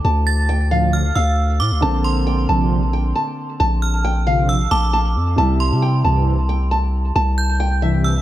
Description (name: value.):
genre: hip hop.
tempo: 135 BPM.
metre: 4/4.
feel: half-time.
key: unclear.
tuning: A4 = 440 Hz.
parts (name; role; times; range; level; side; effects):
nylon-string guitar; melody; 0.0-8.0 s; E5 to A5; -22 LUFS; equal; low-pass filter, dub echo.
dark baby grand piano; accompaniment; 0.0-8.2 s; C3 to E4; -26 LUFS; right 1 dB; low-pass filter.
long sustained 808-style bass; bass; 0.0-8.2 s; Bb1 to C3; -18 LUFS; equal; none.
metallic FM bell; second line; 0.3-8.2 s; C6 to A6; -26 LUFS; right 4 dB; chorus, dub echo.
mellow synth brass; stabs; 0.7-8.1 s; G2 to F3; -20 LUFS; right 1 dB; chorus.
room: little or no reverb.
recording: echo-heavy mix.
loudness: -15 LUFS.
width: side -13 dB against mid.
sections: 0.0-8.2 A section.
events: none.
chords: 0.0 Dm; 1.8 Bbadd9; 5.4 C.